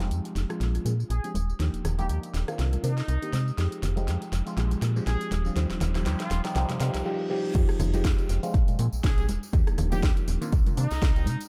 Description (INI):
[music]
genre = filtered disco house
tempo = 121 BPM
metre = 4/4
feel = swing 56% on 16ths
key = F dorian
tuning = A4 = 438 Hz
[part]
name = overdriven reed electric piano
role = accompaniment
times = 0.0-11.3 s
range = Eb3 to Bb4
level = -35 LUFS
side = equal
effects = phaser, sidechain pumping, low-pass filter, analog delay
[part]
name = slap-like FM bass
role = bass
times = 0.0-11.4 s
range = Eb1 to C3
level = -29 LUFS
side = equal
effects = sidechain pumping, low-pass filter
[part]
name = house drum kit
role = drums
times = 0.0-11.5 s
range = crash cymbal, hi-hat, rim click, snare drum, tambourine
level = -40 LUFS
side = equal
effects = overdrive, high-pass filter on snare, sidechain pumping on hats, high-pass filter on hats, sidechain pumping on perc, high-pass filter on perc, sidechain pumping on cymbals, high-pass filter on cymbals, analog delay
[part]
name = tambourine and congas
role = percussion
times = 0.0-11.5 s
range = none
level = -40 LUFS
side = equal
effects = sidechain pumping on perc, low-pass filter on perc, analog delay
[part]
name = bright trumpet section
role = melody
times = 1.1-11.5 s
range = Eb4 to Ab4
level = -40 LUFS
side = equal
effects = vintage 12-bit sampler grit, sidechain pumping, low-pass filter
[part]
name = reverse cymbal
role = sound effects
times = 7.1-7.5 s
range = none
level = -49 LUFS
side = equal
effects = none
[part]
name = electronic kick drum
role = drums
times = 7.5-11.1 s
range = none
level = -26 LUFS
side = equal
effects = overdrive
[sound]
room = light reverb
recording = echo-heavy mix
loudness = -27 LUFS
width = mono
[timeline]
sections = 0.0-7.5 A section; 7.5-11.5 B section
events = build-up 0.0-7.5; drum fill 0.0-7.1; filter sweep 0.0-7.5; reverse cymbal 7.1-7.5; drop 7.5-11.5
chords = 0.0 Fm9; 0.6 Bb13; 1.4 Ebmaj9; 2.6 Cm9; 3.6 Fm9; 4.6 Bb13; 5.3 Ebmaj9; 6.6 Cm; 7.5 Fm9; 8.5 Bb9; 9.3 Ebmaj9; 10.5 Cm9